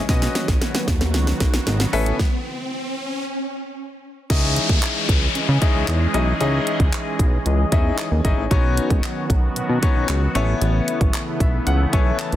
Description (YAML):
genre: dance-pop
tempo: 114 BPM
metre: 4/4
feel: straight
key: C# minor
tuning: A4 = 440 Hz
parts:
  - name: sweeping resonant pad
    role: sustained chords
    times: 0.0-12.4 s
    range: C#3 to D#5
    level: -27 LUFS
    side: right 1 dB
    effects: chorus, sidechain pumping
  - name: riser and downlifter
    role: sound effects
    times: 0.6-8.5 s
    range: none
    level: -28 LUFS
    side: left 2 dB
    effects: none
  - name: bright grand piano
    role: accompaniment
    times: 0.1-12.4 s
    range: B3 to A5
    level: -25 LUFS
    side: left 5 dB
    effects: sidechain pumping
  - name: chorused synth bass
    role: bass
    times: 0.1-12.4 s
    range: G#1 to C#3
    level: -20 LUFS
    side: equal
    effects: sidechain pumping
  - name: pop drum kit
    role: drums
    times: 0.1-12.4 s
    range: crash cymbal, handclaps, hi-hat, kick drum, snare drum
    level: -20 LUFS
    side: equal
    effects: none
room: little or no reverb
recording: dense, heavily limited modern master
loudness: -18 LUFS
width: side -13 dB against mid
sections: 0.0-4.3 A section; 4.3-12.4 B section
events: build-up 0.0-4.3; drum fill 0.0-2.2; riser 0.6-4.3; stop 2.2-4.3; drop 4.3-12.4; grand piano fill 7.5-8.5, 11.1-12.4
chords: 0.1 Badd9; 1.9 Aadd9; 4.3 C#madd9; 8.5 Badd9; 10.4 Aadd9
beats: | 0.09 0.62 1.14 1.67 | 2.19 2.72 3.25 3.77 | 4.30 4.83 5.35 5.88 | 6.41 6.93 7.46 7.98 | 8.51 9.04 9.56 10.09 | 10.62 11.14 11.67 12.20